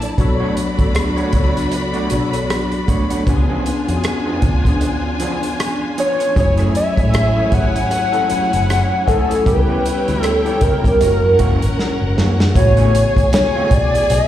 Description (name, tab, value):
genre	lush 1970s-style soul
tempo	78 BPM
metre	4/4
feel	swing 58% on 16ths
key	B dorian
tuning	A4 = 440 Hz
part	warm studio string section	second line	0.0-14.3 s	C#4 to B5	-24 LUFS	left 1 dB	plate reverb, slapback echo, tape echo
part	tine electric piano	accompaniment	0.0-14.3 s	C#3 to G#5	-22 LUFS	left 2 dB	ensemble chorus, plate reverb, slapback echo
part	electric guitar through a small old amp	riff	0.0-14.1 s	E3 to D5	-26 LUFS	right 4 dB	warbly pitch drift, slapback echo
part	warm soul drum kit	drums	0.0-14.3 s	hi-hat, kick drum, rim click, snare drum	-19 LUFS	equal	none
part	vintage muted fingered electric bass	bass	0.2-14.3 s	F#1 to F#2	-18 LUFS	equal	none
part	hollow square lead	melody	6.0-14.3 s	A4 to F#5	-17 LUFS	equal	chorus, plate reverb, slapback echo
room	light reverb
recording	live gig heard through the venue's PA, recital hall reverb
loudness	-14 LUFS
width	side -12 dB against mid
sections	0.0-12.6 A section; 12.6-14.3 B section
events	drum fill 11.8-12.6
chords	0.2 Bm9; 3.3 C#7b9; 6.4 F#m9; 9.5 C#m7b5; 11.0 F#7; 12.6 A6